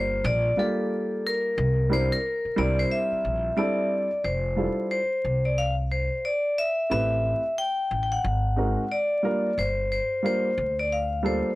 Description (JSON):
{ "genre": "hip hop, jazz-hop", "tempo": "90 BPM", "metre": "4/4", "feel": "swing 62% on 16ths", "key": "F major", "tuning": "A4 = 440 Hz", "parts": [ { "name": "vibraphone with hard mallets", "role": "melody", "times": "0.0-11.6 s", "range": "A4 to G5", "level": "-25 LUFS", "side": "left 1 dB", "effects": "none" }, { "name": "dark upright piano", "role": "accompaniment", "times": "0.0-11.5 s", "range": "G3 to B4", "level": "-28 LUFS", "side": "right 1 dB", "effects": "none" }, { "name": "upright bass", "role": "bass", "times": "0.0-11.4 s", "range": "F1 to D2", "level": "-27 LUFS", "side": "equal", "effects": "none" } ], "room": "small room ambience", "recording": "dry, gritty hardware recording, vinyl crackle", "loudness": "-23 LUFS", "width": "side -18 dB against mid", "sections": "0.0-4.2 A section; 4.2-11.6 B section", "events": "vibraphone solo 0.0-4.2", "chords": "0.0 Gm7; 1.6 C9; 4.2 Fmaj13; 6.9 Am9; 8.2 Ab9; 9.6 Gm7", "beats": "0.24 0.91 | 1.57 2.24 2.90 3.57 | 4.24 4.91 5.57 6.24 | 6.91 7.57 8.24 8.90 | 9.57 10.24 10.90" }